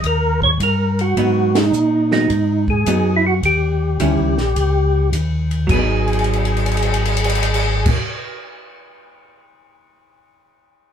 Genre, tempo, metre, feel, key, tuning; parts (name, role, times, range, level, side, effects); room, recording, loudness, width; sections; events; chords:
soul jazz organ trio; 106 BPM; 4/4; swing 68% on 8ths; G# minor; A4 = 440 Hz
percussive tonewheel organ; melody; 0.0-7.9 s; D#4 to C#5; -19 LUFS; right 2 dB; slow rotary speaker, chorus vibrato
mellow tonewheel organ; bass; 0.0-7.9 s; G#1 to A#2; -19 LUFS; left 1 dB; chorus vibrato, slow rotary speaker
compact cocktail drum kit; drums; 0.0-9.4 s; crash cymbal, hi-hat, kick drum, ride cymbal, snare drum; -23 LUFS; equal
vintage hollow-body jazz guitar; accompaniment; 1.2-8.0 s; D#3 to E4; -21 LUFS; right 1 dB
moderate studio ambience, RT60 0.5 s; band playing live in one room; -15 LUFS; side -8 dB against mid
0.0-5.7 A section; 5.7-8.0 B section
band accent 1.4; drum fill 6.0-7.8
0.0 D#; 1.2 G#m7; 3.4 D#7b9; 5.7 G#m7